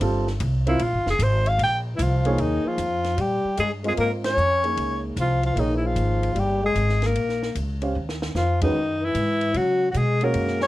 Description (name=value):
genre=modal jazz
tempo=151 BPM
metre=4/4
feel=swing 67% on 8ths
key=Eb mixolydian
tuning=A4 = 440 Hz
part: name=warm upright piano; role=accompaniment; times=0.0-10.7 s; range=G3 to F5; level=-27 LUFS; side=right 2 dB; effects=none
part: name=upright bass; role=bass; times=0.0-10.7 s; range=F1 to Db3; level=-24 LUFS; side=equal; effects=none
part: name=compact cocktail drum kit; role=drums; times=0.0-10.7 s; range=hi-hat, kick drum, ride cymbal, snare drum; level=-36 LUFS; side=equal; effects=none
part: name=breathy alto saxophone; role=melody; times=0.7-10.7 s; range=Eb4 to G5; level=-24 LUFS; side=equal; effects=none
part: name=growling trombone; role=second line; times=2.0-10.7 s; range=Eb3 to Db4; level=-28 LUFS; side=left 4 dB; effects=none
room=light reverb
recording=dark, warm production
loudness=-20 LUFS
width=side -16 dB against mid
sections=0.0-2.4 A section; 2.4-10.7 B section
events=alto saxophone solo 0.0-2.4; band accent 4.2, 8.6; drum fill 8.0-8.4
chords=0.0 Fadd9; 0.8 Bbsus2; 2.4 Eb9sus4; 8.8 Gb9sus4